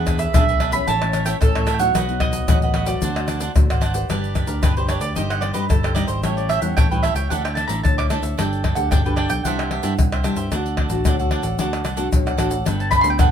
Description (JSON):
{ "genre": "samba and choro", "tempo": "112 BPM", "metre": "4/4", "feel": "straight", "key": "G major from 4.1 s", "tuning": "A4 = 440 Hz", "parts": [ { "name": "mandolin", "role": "melody", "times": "0.0-13.3 s", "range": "A4 to D6", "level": "-23 LUFS", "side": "right 3 dB", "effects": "none" }, { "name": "cavaquinho", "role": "accompaniment", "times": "0.0-13.3 s", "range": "D4 to G5", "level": "-28 LUFS", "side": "right 4 dB", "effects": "none" }, { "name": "nylon-string guitar", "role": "accompaniment", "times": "0.0-13.3 s", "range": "F#2 to B4", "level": "-27 LUFS", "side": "left 3 dB", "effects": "none" }, { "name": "fingered electric bass with an envelope filter", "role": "bass", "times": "0.0-13.3 s", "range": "G1 to A2", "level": "-25 LUFS", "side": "equal", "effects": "none" }, { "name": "tube shaker, surdo, pandeiro and tamborim", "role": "percussion", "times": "0.1-13.3 s", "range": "none", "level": "-20 LUFS", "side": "left 1 dB", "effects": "none" } ], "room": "light reverb", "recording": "minimal, uncompressed stereo recording", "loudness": "-17 LUFS", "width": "side -8 dB against mid", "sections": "0.0-4.1 A section; 4.1-13.3 B section", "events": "mandolin solo 4.1-13.3", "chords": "0.0 E7; 0.9 A; 1.9 B; 3.0 D7; 4.1 G; 5.2 Cm/G; 6.2 A7; 7.3 Dsus2; 8.4 Gsus2; 9.4 Cadd9; 10.5 D; 12.7 Gadd9", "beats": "0.34 0.88 1.41 | 1.95 2.48 3.02 3.56 | 4.09 4.63 5.16 5.70 | 6.24 6.77 7.31 7.84 | 8.38 8.91 9.45 9.98 | 10.52 11.05 11.59 12.12 | 12.66 13.19" }